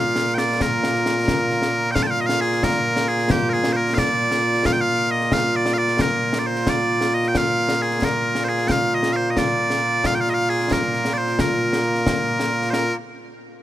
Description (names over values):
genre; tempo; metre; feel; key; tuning
scottish traditional, Scottish pipe music; 89 BPM (dotted quarters); 6/8; straight; Bb mixolydian; A4 = 440 Hz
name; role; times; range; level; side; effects
loud bright bagpipes; melody; 0.0-12.9 s; Bb2 to A5; -19 LUFS; equal; none
concert snare drum and concert bass drum; drums; 0.2-12.9 s; none; -25 LUFS; left 1 dB; none
room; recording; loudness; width
light reverb; none; -18 LUFS; side -13 dB against mid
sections
0.0-1.9 A section; 1.9-12.7 B section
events
none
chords
none